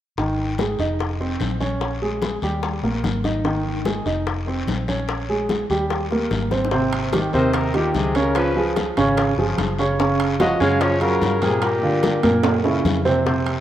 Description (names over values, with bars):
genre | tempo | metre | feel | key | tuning
Afro-Cuban jazz | 147 BPM | 4/4 | straight | Ab major | A4 = 440 Hz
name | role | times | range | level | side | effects
warm baby grand piano | accompaniment | 0.2-13.6 s | Bb2 to Eb5 | -21 LUFS | right 2 dB | none
vintage muted fingered electric bass | bass | 0.2-13.6 s | F1 to G2 | -26 LUFS | left 1 dB | none
bongos | percussion | 0.2-13.5 s | none | -30 LUFS | left 7 dB | none
congas | percussion | 0.2-13.6 s | none | -30 LUFS | left 3 dB | none
guiro | percussion | 0.2-13.6 s | none | -34 LUFS | left 5 dB | none
timbales | percussion | 6.9-13.6 s | none | -30 LUFS | right 7 dB | none
warm trumpet | melody | 7.3-12.4 s | G4 to F5 | -27 LUFS | left 1 dB | none
breathy baritone saxophone | second line | 7.3-12.4 s | Bb2 to Ab3 | -25 LUFS | left 3 dB | none
room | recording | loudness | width
moderate lush hall reverb, RT60 2.5 s | rough home demo mix | -18 LUFS | side -12 dB against mid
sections
0.2-6.7 A section; 6.7-13.6 B section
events
drum fill 6.5, 12.4-13.3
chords
0.2 Ab5; 1.0 F5; 1.8 Bbm7; 2.6 Eb; 3.5 Ab5; 4.3 F5; 5.1 Bbm7; 5.9 Eb; 6.7 Abmaj7; 8.4 Db7; 10.0 Gbmaj7; 11.6 Gm7; 12.4 Gb7#11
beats
| 0.18 0.59 0.99 1.40 | 1.81 2.22 2.63 3.04 | 3.45 3.86 4.27 4.68 | 5.09 5.50 5.91 6.31 | 6.72 7.13 7.54 7.95 | 8.36 8.77 9.18 9.58 | 9.99 10.40 10.81 11.22 | 11.63 12.04 12.44 12.85 | 13.26